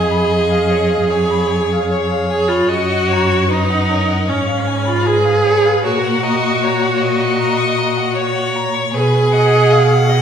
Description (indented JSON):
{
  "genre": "classical, slow romantic movement for string quartet",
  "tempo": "77 BPM",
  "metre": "4/4",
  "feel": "rubato",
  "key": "F# major",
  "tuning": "A4 = 444 Hz",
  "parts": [
    { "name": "rich violin", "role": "melody", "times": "0.0-10.2 s", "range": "C#5 to C#6", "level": "-22 LUFS", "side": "left 7 dB", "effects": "none" },
    { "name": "rich violin", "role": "second line", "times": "0.0-10.2 s", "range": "A#4 to F#5", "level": "-22 LUFS", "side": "left 2 dB", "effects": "none" },
    { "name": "rich viola", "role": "accompaniment", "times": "0.0-10.2 s", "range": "C#4 to G#4", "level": "-16 LUFS", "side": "right 1 dB", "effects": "none" },
    { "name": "warm cello", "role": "bass", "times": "0.0-10.2 s", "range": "F2 to B2", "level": "-18 LUFS", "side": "right 1 dB", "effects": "none" }
  ],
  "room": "wet recital hall reverb, RT60 1.3 s",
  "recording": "heard from further back in the room",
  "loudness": "-13 LUFS",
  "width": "side -8 dB against mid",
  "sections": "0.0-10.2 A section",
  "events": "none",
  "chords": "0.0 C#7/E#; 2.7 F#; 4.3 C#7/G#; 5.8 F#/A#; 8.9 G#m7/B",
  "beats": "0.30 1.09 1.89 | 2.68 3.49 4.28 5.06 | 5.84 6.62 7.39 8.16 | 8.93 9.72"
}